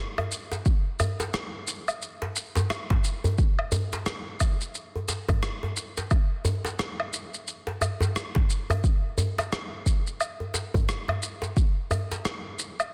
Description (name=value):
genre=downtempo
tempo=88 BPM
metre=4/4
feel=swing 60% on 16ths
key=none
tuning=none
part: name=electronic woodblock, shaker and rim click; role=drums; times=0.2-12.9 s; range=none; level=-34 LUFS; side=equal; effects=studio reverb, soft clipping on snare
part: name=djembe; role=percussion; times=0.2-12.2 s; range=none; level=-32 LUFS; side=equal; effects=none
part: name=electronic kick drum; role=drums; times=0.7-11.7 s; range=none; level=-26 LUFS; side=equal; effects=overdrive, studio reverb
room=light reverb, digital ambience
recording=dense, heavily limited modern master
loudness=-28 LUFS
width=mono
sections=0.0-12.9 A section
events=none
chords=none